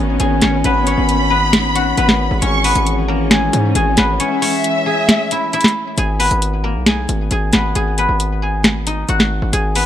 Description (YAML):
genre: hip hop, trap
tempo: 135 BPM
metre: 4/4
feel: half-time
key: G# minor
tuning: A4 = 440 Hz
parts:
  - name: guzheng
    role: melody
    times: 0.0-9.9 s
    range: A#3 to G#5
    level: -19 LUFS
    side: left 2 dB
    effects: low-pass filter, ping-pong delay
  - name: warm studio string section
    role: sustained chords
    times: 0.0-5.9 s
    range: D#3 to C#4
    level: -21 LUFS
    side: left 2 dB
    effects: stereo widening
  - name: distorted 808-style bass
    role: bass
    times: 0.0-9.9 s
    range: G#1 to G#2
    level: -18 LUFS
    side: equal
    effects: distortion
  - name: booming analog drum machine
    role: drums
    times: 0.2-9.9 s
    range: hi-hat, snare drum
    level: -16 LUFS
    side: equal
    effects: none
  - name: warm studio violin section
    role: second line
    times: 0.6-5.9 s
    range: E5 to C#6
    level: -20 LUFS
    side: equal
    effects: ping-pong delay
room: little or no reverb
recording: none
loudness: -13 LUFS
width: side -11 dB against mid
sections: 0.0-6.0 A section; 6.0-9.9 B section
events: kick muted 4.2-6.0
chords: 0.0 Badd9/G#; 2.4 C#m/G#; 6.0 G#m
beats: 0.20 | 0.64 1.09 1.53 1.98 | 2.42 2.87 3.31 3.75 | 4.20 4.64 5.09 5.53 | 5.98 6.42 6.87 7.31 | 7.75 8.20 8.64 9.09 | 9.53